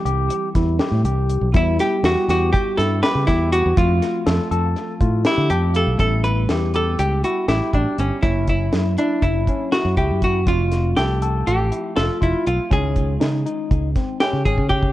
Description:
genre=progressive instrumental, band music in an uneven meter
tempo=242 BPM (eighths)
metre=9/8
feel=straight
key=unclear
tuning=A4 = 439 Hz
part: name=archtop guitar, miked and amplified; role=melody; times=0.0-14.9 s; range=C#4 to B4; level=-22 LUFS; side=equal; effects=digital delay
part: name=bell-like tine electric piano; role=accompaniment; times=0.0-14.9 s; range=D#3 to A5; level=-30 LUFS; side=right 1 dB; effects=fast stereo tremolo
part: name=overdriven tine electric piano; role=arpeggios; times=0.0-14.9 s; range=C4 to A4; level=-26 LUFS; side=left 3 dB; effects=phaser
part: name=fingered electric bass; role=bass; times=0.1-14.9 s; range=F1 to D3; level=-20 LUFS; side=equal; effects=none
part: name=deep reggae drum kit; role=drums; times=0.1-14.9 s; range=hi-hat, kick drum, snare drum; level=-22 LUFS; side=equal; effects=none
room=light reverb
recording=worn, warbling old tape, cassette tape, warbly pitch drift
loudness=-17 LUFS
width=side -15 dB against mid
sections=0.0-6.0 A section; 6.0-14.9 B section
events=tine electric piano fill 5.3-6.0; drum fill 14.6-14.9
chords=0.0 C; 1.5 Emadd9; 3.8 F; 6.0 A7; 8.2 F#7; 10.5 F; 12.7 C#sus2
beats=0.06 0.31 0.55 0.80 1.05 1.29 | 1.54 1.79 2.04 2.28 2.53 2.78 3.03 3.27 3.52 | 3.77 4.01 4.26 4.51 4.76 5.00 5.25 5.50 5.75 | 6.00 6.24 6.49 6.74 6.99 7.24 7.49 7.73 7.98 | 8.23 8.48 8.73 8.98 9.22 9.47 9.72 9.97 10.22 | 10.47 10.72 10.97 11.22 11.46 11.71 11.96 12.21 12.46 | 12.71 12.96 13.21 13.46 13.71 13.95 14.20 14.45 14.70

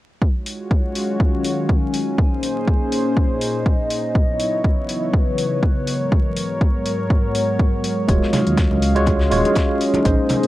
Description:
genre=deep house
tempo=122 BPM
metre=4/4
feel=swing 55% on 16ths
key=Eb minor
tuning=A4 = 441 Hz
part: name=warm analog pad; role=sustained chords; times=0.2-10.5 s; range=Gb3 to F5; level=-24 LUFS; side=equal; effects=chorus, sidechain pumping
part: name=electronic kick drum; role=drums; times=0.2-10.2 s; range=none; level=-18 LUFS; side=equal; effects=overdrive, vintage 12-bit sampler grit
part: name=warbly tape-like pad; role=texture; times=0.9-10.5 s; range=Ab2 to Ab5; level=-24 LUFS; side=left 2 dB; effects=chorus, built-in reverb, phaser, sidechain pumping
part: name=electronic hi-hat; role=drums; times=0.5-10.5 s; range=none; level=-30 LUFS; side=left 1 dB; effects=vintage 12-bit sampler grit
part: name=tine electric piano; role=stabs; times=8.1-10.5 s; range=Ab3 to Db5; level=-19 LUFS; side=right 1 dB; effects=fast stereo tremolo, sidechain pumping
part: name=smooth synth bass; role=bass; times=8.1-10.5 s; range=Eb1 to Bb2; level=-20 LUFS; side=equal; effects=sidechain pumping
part: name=damped 70s drum kit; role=drums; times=8.1-10.4 s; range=hi-hat, snare drum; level=-32 LUFS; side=left 1 dB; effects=sidechain pumping on hats, high-pass filter on hats, vintage 12-bit sampler grit, high-pass filter on snare, high-pass filter on room
part: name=congas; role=percussion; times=8.3-10.4 s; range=none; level=-25 LUFS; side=left 1 dB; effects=none
room=light reverb, small room ambience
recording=vinyl crackle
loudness=-17 LUFS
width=side -16 dB against mid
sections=0.2-10.5 A section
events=none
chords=0.2 Ebm11; 2.2 Bbm11; 4.2 Dbm11; 5.9 Abm11; 8.1 Ebm11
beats=| 0.22 0.71 1.20 1.69 | 2.18 2.67 3.17 3.66 | 4.15 4.64 5.13 5.63 | 6.12 6.61 7.10 7.59 | 8.09 8.58 9.07 9.56 | 10.05

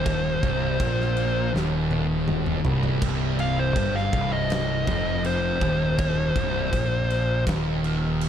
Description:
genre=stoner and doom metal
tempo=81 BPM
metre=4/4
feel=straight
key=C minor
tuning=A4 = 439 Hz
part: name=fuzz lead guitar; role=melody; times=0.0-7.4 s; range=C5 to F5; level=-27 LUFS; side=left 1 dB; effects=distortion, slapback echo
part: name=thick fuzz guitar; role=riff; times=0.0-8.3 s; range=C2 to Bb2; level=-28 LUFS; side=left 8 dB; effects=distortion
part: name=thick fuzz guitar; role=riff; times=0.0-8.3 s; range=C2 to Bb2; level=-27 LUFS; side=right 8 dB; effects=distortion
part: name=fuzz fingered electric bass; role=bass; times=0.0-8.3 s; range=C1 to Bb1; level=-30 LUFS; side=equal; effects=overdrive
part: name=big rock drum kit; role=drums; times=0.1-8.3 s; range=crash cymbal, kick drum, snare drum, toms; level=-29 LUFS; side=equal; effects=none
room=light reverb, small room reverb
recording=none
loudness=-21 LUFS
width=side -9 dB against mid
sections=0.0-8.3 A section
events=lead electric guitar solo 0.0-8.3; drum fill 1.5-3.0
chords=0.0 Cm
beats=| 0.07 0.81 1.55 2.29 | 3.03 3.77 4.51 5.25 | 5.99 6.73 7.46 8.21

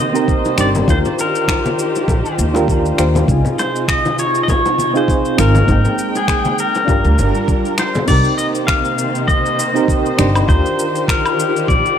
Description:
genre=sunset chillout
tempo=100 BPM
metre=4/4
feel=swing 55% on 16ths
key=C minor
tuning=A4 = 435 Hz
part: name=pedal steel guitar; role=melody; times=0.0-12.0 s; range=Ab4 to F5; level=-19 LUFS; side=left 2 dB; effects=digital delay
part: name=soft electric-piano-like synth keys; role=accompaniment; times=0.0-12.0 s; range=C3 to G5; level=-19 LUFS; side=moving between left 2 dB and right 5 dB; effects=chorus, tremolo, auto-pan, digital delay
part: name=dark chamber string section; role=sustained chords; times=0.0-12.0 s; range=C3 to G5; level=-22 LUFS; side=equal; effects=none
part: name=deep house drum kit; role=drums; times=0.2-12.0 s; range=crash cymbal, finger snaps, shaker, woodblock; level=-24 LUFS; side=left 2 dB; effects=overdrive
part: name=electronic kick drum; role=drums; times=0.3-11.8 s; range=none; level=-18 LUFS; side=equal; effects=none
part: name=bongos and congas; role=percussion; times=0.5-8.1 s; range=none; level=-24 LUFS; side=left 2 dB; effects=none
part: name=upright bass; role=bass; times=0.6-11.8 s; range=G1 to Eb2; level=-15 LUFS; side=equal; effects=none
room=light reverb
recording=none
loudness=-13 LUFS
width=side -8 dB against mid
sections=0.0-8.1 A section; 8.1-12.0 B section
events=none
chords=0.0 Cm9; 0.9 Ebmaj9; 3.3 Dbmaj9; 5.7 Abmaj7; 6.9 Gm7; 8.1 Cm9; 10.5 Ebmaj9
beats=0.28 | 0.89 1.49 2.08 2.69 | 3.29 3.88 4.49 5.08 | 5.68 6.29 6.88 7.49 | 8.09 8.69 9.29 9.88 | 10.48 11.09 11.69

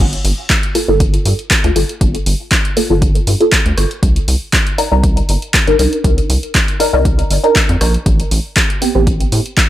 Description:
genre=deep house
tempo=119 BPM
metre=4/4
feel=swing 53% on 16ths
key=G minor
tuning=A4 = 439 Hz
part: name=rubbery square bass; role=bass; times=0.0-9.4 s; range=G1 to A2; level=-15 LUFS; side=equal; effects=sidechain pumping
part: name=punchy analog drum machine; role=drums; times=0.1-9.7 s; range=handclaps, hi-hat, rim click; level=-17 LUFS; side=equal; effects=overdrive
part: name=electronic kick drum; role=drums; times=0.5-9.7 s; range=none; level=-15 LUFS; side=equal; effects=overdrive
part: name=filtered dub chord stab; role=stabs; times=0.7-9.1 s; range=Bb3 to Bb4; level=-16 LUFS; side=equal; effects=phaser, wide subtle chorus, sidechain pumping, analog delay
room=light reverb, digital ambience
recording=echo-heavy mix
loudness=-11 LUFS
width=side -13 dB against mid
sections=0.0-9.7 A section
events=filter sweep on synth stab 0.0-9.7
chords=0.0 Gm7; 4.0 Cm7; 8.1 Am7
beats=0.50 1.00 1.51 | 2.01 2.52 3.02 3.52 | 4.03 4.53 5.04 5.54 | 6.04 6.55 7.05 7.56 | 8.06 8.56 9.07 9.57

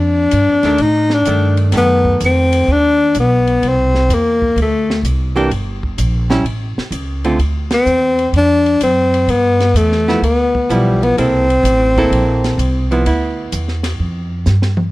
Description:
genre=jazz, small-group swing and bop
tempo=127 BPM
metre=4/4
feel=swing 68% on 8ths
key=unclear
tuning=A4 = 435 Hz
part: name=breathy tenor saxophone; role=melody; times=0.0-13.0 s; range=G3 to Eb4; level=-13 LUFS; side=left 1 dB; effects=slapback echo
part: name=upright bass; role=bass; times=0.0-14.9 s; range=G1 to A2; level=-16 LUFS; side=equal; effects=none
part: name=compact cocktail drum kit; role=drums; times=0.3-14.9 s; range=hi-hat, kick drum, ride cymbal, snare drum, toms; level=-26 LUFS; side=equal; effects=none
part: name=archtop guitar, miked and amplified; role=accompaniment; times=0.6-14.4 s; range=D3 to A4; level=-19 LUFS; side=right 2 dB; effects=none
room=small room ambience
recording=dry, close 1970s-style studio recording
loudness=-12 LUFS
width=side -18 dB against mid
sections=0.0-14.9 A section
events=band accent 7.6; drum fill 14.5-14.9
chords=0.0 F13; 1.7 F#dim7; 3.6 C13; 5.5 Edim; 6.5 A; 7.4 Dm7; 9.3 G13; 11.2 C6; 13.1 G6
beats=0.32 0.79 1.27 | 1.74 2.21 2.68 3.15 | 3.63 4.10 4.57 5.04 | 5.51 5.99 6.46 6.93 | 7.40 7.87 8.34 8.81 | 9.29 9.76 10.23 10.70 | 11.17 11.64 12.11 12.58 | 13.05 13.53 14.00 14.47

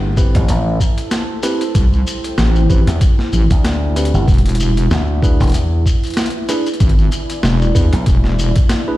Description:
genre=glitch hop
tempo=95 BPM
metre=4/4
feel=swing 56% on 16ths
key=A minor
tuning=A4 = 440 Hz
part: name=slap bass with an envelope filter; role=bass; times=0.0-8.0 s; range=E1 to E2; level=-16 LUFS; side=equal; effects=none
part: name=deep dark ambient pad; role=texture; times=0.0-9.0 s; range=D4 to G#5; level=-24 LUFS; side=right 2 dB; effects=chorus, built-in reverb, sidechain pumping
part: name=bell-like tine electric piano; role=stabs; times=0.2-9.0 s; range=C4 to B4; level=-23 LUFS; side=equal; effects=sidechain pumping, ping-pong delay
part: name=electronic kick drum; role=drums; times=0.2-8.7 s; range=none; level=-14 LUFS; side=equal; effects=overdrive
part: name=shekere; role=percussion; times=0.2-8.8 s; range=none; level=-29 LUFS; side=left 3 dB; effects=none
part: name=boom bap sampler-style drum kit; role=drums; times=0.3-8.8 s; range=hi-hat, snare drum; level=-23 LUFS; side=equal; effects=overdrive
part: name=wobble bass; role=bass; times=1.7-8.5 s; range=E1 to E2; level=-14 LUFS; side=equal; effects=chorus, tube saturation
room=little or no reverb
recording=played on a big sound system in a bare room, stone room reverb, vinyl crackle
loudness=-12 LUFS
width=side -16 dB against mid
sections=0.0-9.0 A section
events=none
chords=0.0 Am7; 4.3 E7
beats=0.49 1.12 | 1.75 2.38 3.01 3.65 | 4.28 4.91 5.54 6.17 | 6.80 7.43 8.07 8.70

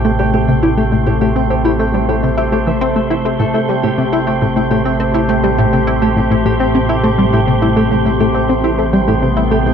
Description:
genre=ambient, sequencer-driven space music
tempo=103 BPM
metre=4/4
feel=straight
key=A minor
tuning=A4 = 439 Hz
part: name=evolving wavetable pad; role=sustained chords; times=0.0-9.7 s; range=C3 to G4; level=-16 LUFS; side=equal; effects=chorus, built-in reverb
part: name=concert harp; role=arpeggios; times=0.0-9.7 s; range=G4 to G5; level=-22 LUFS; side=right 1 dB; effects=auto-pan, ping-pong delay
part: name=plucky analog bass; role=riff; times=0.0-9.7 s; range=A2 to E4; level=-16 LUFS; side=left 1 dB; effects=analog chorus, ping-pong delay
part: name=analog drone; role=bass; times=0.0-9.7 s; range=A1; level=-20 LUFS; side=equal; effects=chorus
part: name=wind-like tuned noise texture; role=texture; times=0.0-9.7 s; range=C6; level=-29 LUFS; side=right 1 dB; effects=built-in reverb
room=moderate plate reverb, RT60 2.6 s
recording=dark, warm production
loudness=-12 LUFS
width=side -7 dB against mid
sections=0.0-9.7 A section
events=fade-in on synth texture 0.0-9.7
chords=0.0 Am7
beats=0.05 0.63 | 1.21 1.79 2.38 2.96 | 3.54 4.12 4.71 5.29 | 5.87 6.45 7.04 7.62 | 8.20 8.78 9.37

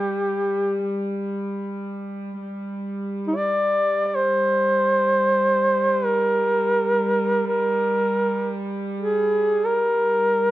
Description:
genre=caucasian folk, Caucasian lament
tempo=free time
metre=none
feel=none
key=G phrygian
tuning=A4 = 445 Hz
part: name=mellow duduk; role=melody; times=0.0-10.5 s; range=Eb4 to D5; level=-19 LUFS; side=equal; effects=none
part: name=rich chamber string section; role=drone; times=0.0-10.5 s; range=G3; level=-27 LUFS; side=right 1 dB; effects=none
room=light reverb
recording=close, detailed microphones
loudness=-19 LUFS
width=side -15 dB against mid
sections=0.0-2.4 A section; 2.4-10.5 A section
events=none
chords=none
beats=free time

